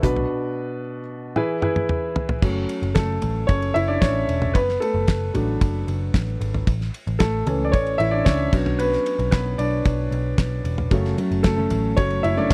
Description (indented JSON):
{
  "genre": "piano-driven pop",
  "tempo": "113 BPM",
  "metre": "4/4",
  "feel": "straight",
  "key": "F# minor",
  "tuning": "A4 = 441 Hz",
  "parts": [
    { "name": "warm upright piano", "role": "accompaniment", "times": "0.0-12.5 s", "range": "B2 to E5", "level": "-26 LUFS", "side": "equal", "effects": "none" },
    { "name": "vintage muted picked electric bass", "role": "bass", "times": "0.0-12.5 s", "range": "E1 to C#2", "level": "-27 LUFS", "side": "equal", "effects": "none" },
    { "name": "damped 70s drum kit", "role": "drums", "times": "0.0-12.5 s", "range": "crash cymbal, hi-hat, kick drum, ride cymbal, snare drum, toms", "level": "-24 LUFS", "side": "equal", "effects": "none" },
    { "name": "fingerpicked steel-string acoustic guitar", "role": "riff", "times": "10.9-12.5 s", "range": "F#2 to A4", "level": "-27 LUFS", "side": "equal", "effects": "none" }
  ],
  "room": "little or no reverb",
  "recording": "dry, close 1970s-style studio recording",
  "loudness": "-22 LUFS",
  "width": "mono",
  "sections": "0.0-2.4 A section; 2.4-12.5 B section",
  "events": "break 0.3-2.4; drum fill 1.4-2.4; upright piano solo 2.4-12.5",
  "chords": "0.0 Bm; 1.4 E; 2.4 F#m; 4.5 D/F#; 6.7 A; 8.5 Bm; 10.9 F#m"
}